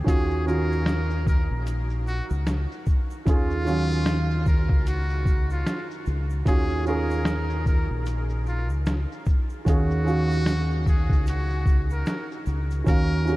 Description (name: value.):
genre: lo-fi hip hop.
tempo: 75 BPM.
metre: 4/4.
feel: swing 59% on 16ths.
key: Eb minor.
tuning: A4 = 444 Hz.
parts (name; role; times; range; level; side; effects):
felt-muted upright piano; accompaniment; 0.0-13.4 s; Eb3 to F5; -29 LUFS; right 2 dB; cassette tape.
trumpet with metal mute; melody; 0.1-13.4 s; F4 to Bb4; -33 LUFS; equal; analog delay.
deep dub fingered electric bass; bass; 0.1-13.4 s; Bb1 to Eb2; -25 LUFS; equal; none.
lo-fi sampler-style drum kit; drums; 0.1-13.4 s; hi-hat, kick drum, shaker, snare drum; -24 LUFS; equal; none.
tube shaker; percussion; 0.1-13.4 s; none; -58 LUFS; left 6 dB; none.
room: light reverb, small room ambience.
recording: cassette tape.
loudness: -22 LUFS.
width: side -18 dB against mid.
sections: 0.0-12.9 A section.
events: none.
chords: 0.1 Ebm9.